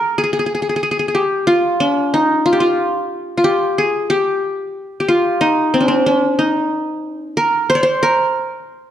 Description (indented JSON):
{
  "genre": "arabic",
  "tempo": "61 BPM (dotted quarters)",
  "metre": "6/8",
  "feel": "straight",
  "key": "C maqam bayati",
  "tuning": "A4 = 440 Hz",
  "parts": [
    { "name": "qanun", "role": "solo", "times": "0.0-8.9 s", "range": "C4 to D5-50c", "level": "-14 LUFS", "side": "equal", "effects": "none" }
  ],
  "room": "light reverb",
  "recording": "dark, warm production",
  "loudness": "-14 LUFS",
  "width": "side -10 dB against mid",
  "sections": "0.0-8.9 A section",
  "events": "none",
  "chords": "none",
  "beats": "0.51 | 1.49 2.47 | 3.45 4.43 | 5.41 6.40 | 7.38 8.36"
}